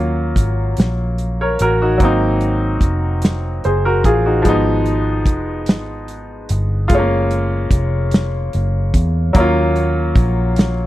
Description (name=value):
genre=slow six-eight R&B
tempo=49 BPM (dotted quarters)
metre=6/8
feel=straight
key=Eb minor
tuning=A4 = 440 Hz
part: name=clear baby grand piano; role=accompaniment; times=0.0-10.9 s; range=F3 to Db5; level=-18 LUFS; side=equal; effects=none
part: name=vintage muted fingered electric bass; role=bass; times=0.0-10.9 s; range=F1 to Fb2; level=-18 LUFS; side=equal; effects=none
part: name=warm soul drum kit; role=drums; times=0.4-10.8 s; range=hi-hat, kick drum, snare drum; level=-15 LUFS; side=equal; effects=none
room=little or no reverb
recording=dry, close 1970s-style studio recording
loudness=-14 LUFS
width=side -15 dB against mid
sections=0.0-9.3 A section; 9.3-10.9 B section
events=none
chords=0.0 Ebm9; 2.0 Ab7; 4.5 Fm9b5; 6.9 Gbmaj9; 9.3 Ebm9